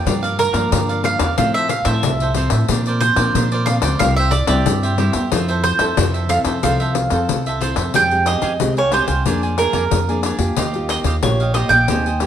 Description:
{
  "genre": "samba and choro",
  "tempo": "91 BPM",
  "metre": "4/4",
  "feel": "straight",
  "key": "F major, F minor from 7.9 s",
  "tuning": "A4 = 439 Hz",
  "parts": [
    { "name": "cavaquinho", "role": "accompaniment", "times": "0.0-12.3 s", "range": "D4 to Ab5", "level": "-25 LUFS", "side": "right 4 dB", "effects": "none" },
    { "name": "nylon-string guitar", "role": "accompaniment", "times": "0.0-12.3 s", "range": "G2 to A4", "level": "-24 LUFS", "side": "left 2 dB", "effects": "none" },
    { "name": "upright bass", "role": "bass", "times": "0.0-12.3 s", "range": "Bb1 to Bb2", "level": "-20 LUFS", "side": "equal", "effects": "none" },
    { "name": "pandeiro", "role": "percussion", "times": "0.1-12.3 s", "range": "none", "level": "-22 LUFS", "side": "left 7 dB", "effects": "none" },
    { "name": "mandolin", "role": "melody", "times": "0.4-12.3 s", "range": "Bb4 to G5", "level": "-19 LUFS", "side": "right 3 dB", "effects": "plate reverb" }
  ],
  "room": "moderate large studio reverb, RT60 1.0 s",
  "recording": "none",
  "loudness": "-15 LUFS",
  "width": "side -10 dB against mid",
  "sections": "0.0-7.9 A section; 7.9-12.3 B section",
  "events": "none",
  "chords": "0.1 Gm7; 1.4 Fmaj7/A; 2.7 Bbadd9; 4.0 C; 5.3 Fmaj7; 7.9 Fmadd9; 9.3 Bb7/F; 10.6 Ebadd9",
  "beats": "| 0.06 0.72 1.38 2.04 | 2.69 3.35 4.01 4.66 | 5.32 5.98 6.63 7.29 | 7.95 8.60 9.26 9.92 | 10.57 11.23 11.88"
}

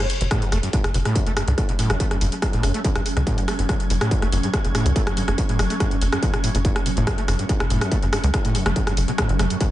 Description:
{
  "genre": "driving peak-time techno",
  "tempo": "142 BPM",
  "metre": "4/4",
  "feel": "straight",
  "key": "F# phrygian",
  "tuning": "A4 = 440 Hz",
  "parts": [
    { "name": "overdriven acid bass", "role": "riff", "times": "0.0-9.7 s", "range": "E2 to A3", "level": "-26 LUFS", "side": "equal", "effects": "lush chorus, sidechain pumping, dub echo" },
    { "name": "swarming drone", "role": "drone", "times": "1.0-9.7 s", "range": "F#3 to C#4", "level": "-30 LUFS", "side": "right 1 dB", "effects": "built-in reverb, sidechain pumping" },
    { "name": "techno drum kit", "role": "drums", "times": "0.0-9.7 s", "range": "hi-hat, rim click", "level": "-26 LUFS", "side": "equal", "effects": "dub echo" },
    { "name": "tight sequencer bass", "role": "bass", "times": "0.2-9.5 s", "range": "F#1 to C#2", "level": "-22 LUFS", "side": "equal", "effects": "sidechain pumping" },
    { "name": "electronic kick drum", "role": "drums", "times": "0.3-9.7 s", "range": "none", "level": "-23 LUFS", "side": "equal", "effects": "distortion" }
  ],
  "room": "little or no reverb",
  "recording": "echo-heavy mix, nothing above 10.5 kHz",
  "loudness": "-19 LUFS",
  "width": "side -14 dB against mid",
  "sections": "0.0-9.7 A section",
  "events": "none",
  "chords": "0.0 F#5",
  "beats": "0.31 0.73 1.16 | 1.58 2.00 2.42 2.85 | 3.27 3.69 4.11 4.54 | 4.96 5.38 5.80 6.23 | 6.65 7.07 7.49 7.92 | 8.34 8.76 9.18 9.61"
}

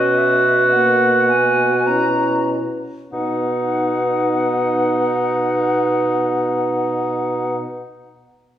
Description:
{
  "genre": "classical, slow romantic movement for wind quintet",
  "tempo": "free time",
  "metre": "none",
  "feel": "none",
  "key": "B major",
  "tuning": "A4 = 440 Hz",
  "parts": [
    { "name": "silver concert flute", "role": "melody", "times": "0.0-7.6 s", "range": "D#5 to A#5", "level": "-23 LUFS", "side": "left 4 dB", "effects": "none" },
    { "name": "warm oboe", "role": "second line", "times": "0.0-7.6 s", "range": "D#4 to F#4", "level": "-20 LUFS", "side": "left 1 dB", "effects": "none" },
    { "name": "clear clarinet", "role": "accompaniment", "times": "0.0-7.6 s", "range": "D#4 to F#4", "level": "-25 LUFS", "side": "right 3 dB", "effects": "none" },
    { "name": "mellow French horn", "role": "accompaniment", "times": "0.0-7.6 s", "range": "A#3 to C#4", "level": "-27 LUFS", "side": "left 1 dB", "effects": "none" },
    { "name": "warm bassoon", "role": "bass", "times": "0.0-7.6 s", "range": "B2", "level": "-20 LUFS", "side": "right 2 dB", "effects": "none" }
  ],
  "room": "wet recital hall reverb, RT60 1.6 s",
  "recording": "heard from further back in the room",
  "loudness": "-15 LUFS",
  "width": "side -11 dB against mid",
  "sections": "0.0-3.1 A section; 3.1-7.9 B section",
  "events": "slowing down 0.0-3.1",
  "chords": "0.0 F#7/B; 3.1 B",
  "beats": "free time"
}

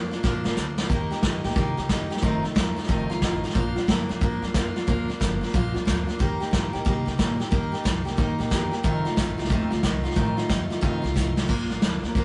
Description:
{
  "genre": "rockabilly",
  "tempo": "181 BPM",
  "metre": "4/4",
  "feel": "swing 64% on 8ths",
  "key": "Bb major",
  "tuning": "A4 = 440 Hz",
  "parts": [
    { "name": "picked steel-string acoustic guitar", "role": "accompaniment", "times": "0.0-12.2 s", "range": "F2 to G4", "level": "-29 LUFS", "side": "equal", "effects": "none" },
    { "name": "upright bass", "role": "bass", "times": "0.0-12.2 s", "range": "F1 to C3", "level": "-34 LUFS", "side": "equal", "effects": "none" },
    { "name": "vintage brush drum kit", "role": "drums", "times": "0.1-12.2 s", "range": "crash cymbal, hi-hat, kick drum, snare drum", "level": "-27 LUFS", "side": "equal", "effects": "none" }
  ],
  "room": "light reverb",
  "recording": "rough rehearsal-room recording, warm saturation, nothing above 10.4 kHz",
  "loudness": "-25 LUFS",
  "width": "mono",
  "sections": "0.9-11.5 A section",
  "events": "drum fill 0.2-0.9, 11.2-11.5",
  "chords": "0.0 Bb; 0.9 Eb; 2.2 F7; 3.6 Bb; 6.2 Eb; 8.8 F7; 11.5 Bb",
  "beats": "0.24 0.57 | 0.90 1.24 1.57 1.90 | 2.23 2.56 2.89 3.22 | 3.55 3.88 4.21 4.55 | 4.88 5.21 5.54 5.87 | 6.20 6.53 6.86 7.19 | 7.52 7.85 8.18 8.51 | 8.84 9.18 9.51 9.84 | 10.17 10.50 10.83 11.16 | 11.49 11.82 12.15"
}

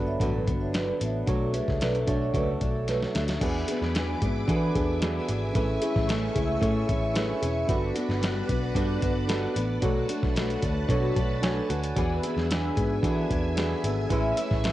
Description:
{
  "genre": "indie pop, bedroom pop",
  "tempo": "112 BPM",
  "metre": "4/4",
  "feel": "straight",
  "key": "unclear",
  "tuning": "A4 = 440 Hz",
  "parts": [
    { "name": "picked steel-string acoustic guitar", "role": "accompaniment", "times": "0.0-14.7 s", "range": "G2 to G#4", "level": "-30 LUFS", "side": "left 2 dB", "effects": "wide subtle chorus, warbly pitch drift, cassette tape" },
    { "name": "soft electric-piano-like synth keys", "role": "accompaniment", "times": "0.0-14.7 s", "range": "C#4 to A5", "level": "-32 LUFS", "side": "right 4 dB", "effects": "chorus, cassette tape" },
    { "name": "vintage muted picked electric bass", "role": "bass", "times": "0.0-14.7 s", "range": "E1 to E3", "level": "-30 LUFS", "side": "equal", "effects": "none" },
    { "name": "vibraphone with medium hard mallets", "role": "second line", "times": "0.1-3.3 s", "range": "F#4 to E5", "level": "-34 LUFS", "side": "right 4 dB", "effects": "ensemble chorus, cassette tape, analog delay" },
    { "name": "dusty soul sampler-style drum kit", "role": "drums", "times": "0.2-14.7 s", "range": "crash cymbal, hi-hat, kick drum, snare drum", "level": "-30 LUFS", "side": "equal", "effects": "none" },
    { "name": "string machine, violins", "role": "sustained chords", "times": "3.4-14.7 s", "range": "A3 to D6", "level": "-37 LUFS", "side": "equal", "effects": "ensemble chorus, cassette tape" }
  ],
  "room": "light reverb",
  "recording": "home recording on cassette, nothing above 10.5 kHz",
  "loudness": "-24 LUFS",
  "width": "side -14 dB against mid",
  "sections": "0.0-3.4 A section; 3.4-14.7 B section",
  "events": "drum fill 2.9-3.4; synth keys fill 10.9-12.0",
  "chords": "0.0 Gmaj7; 1.3 Bm7; 3.4 E7; 5.6 Amaj7; 7.7 Gmaj7; 9.8 Bm7; 12.0 E7; 14.1 Amaj7",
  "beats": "0.20 0.74 | 1.27 1.81 2.34 2.88 | 3.41 3.95 4.48 5.02 | 5.55 6.09 6.62 7.16 | 7.69 8.22 8.76 9.29 | 9.83 10.36 10.90 11.43 | 11.97 12.50 13.04 13.57 | 14.11 14.64"
}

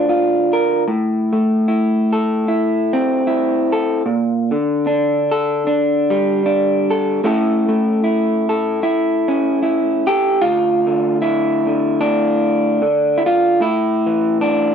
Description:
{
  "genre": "folk, solo fingerstyle acoustic guitar",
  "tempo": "75 BPM",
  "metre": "4/4",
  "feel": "swing 56% on 8ths",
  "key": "D minor",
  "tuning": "A4 = 440 Hz",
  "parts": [
    { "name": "electric guitar through a small old amp", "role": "solo", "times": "0.0-14.7 s", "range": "D2 to C5", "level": "-14 LUFS", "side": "equal", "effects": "none" }
  ],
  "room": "moderate studio reverb, RT60 0.6 s",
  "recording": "dark, warm production",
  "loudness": "-14 LUFS",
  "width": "side -7 dB against mid",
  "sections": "0.0-10.4 A section; 10.4-14.7 B section",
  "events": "none",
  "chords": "0.0 Dm; 0.9 Am; 4.1 Gm/Bb; 7.2 A; 10.4 Dm; 13.6 A5",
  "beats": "0.07 | 0.87 1.66 2.46 3.26 | 4.05 4.85 5.65 6.44 | 7.24 8.04 8.83 9.63 | 10.42 11.22 12.01 12.81 | 13.60 14.40"
}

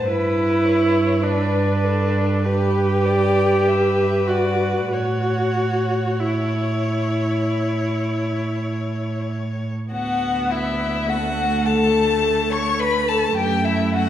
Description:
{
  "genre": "classical, slow romantic movement for string quartet",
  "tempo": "46-53 BPM",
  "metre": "4/4",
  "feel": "rubato",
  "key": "D major",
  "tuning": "A4 = 441 Hz",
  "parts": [
    { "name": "rich violin", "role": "melody", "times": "0.0-14.1 s", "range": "A4 to C#6", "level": "-26 LUFS", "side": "left 5 dB", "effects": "none" },
    { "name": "rich violin", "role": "second line", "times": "0.0-14.1 s", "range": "E4 to C#5", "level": "-25 LUFS", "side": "left 2 dB", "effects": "none" },
    { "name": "warm cello", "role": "bass", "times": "0.0-14.1 s", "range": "D2 to A2", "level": "-23 LUFS", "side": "right 2 dB", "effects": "none" },
    { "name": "warm viola", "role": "accompaniment", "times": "0.1-14.1 s", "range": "A3 to G4", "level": "-22 LUFS", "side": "right 1 dB", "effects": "none" }
  ],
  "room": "wet recital hall reverb, RT60 1.7 s",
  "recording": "heard from further back in the room",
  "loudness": "-18 LUFS",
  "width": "side -11 dB against mid",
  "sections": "0.0-9.9 A section; 9.9-14.1 B section",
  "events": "none",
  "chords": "0.1 G; 4.9 A; 9.9 D",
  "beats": "| 0.09 1.23 2.46 3.66 | 4.92 6.21 7.45 8.68 | 9.93 11.09 12.22 13.37"
}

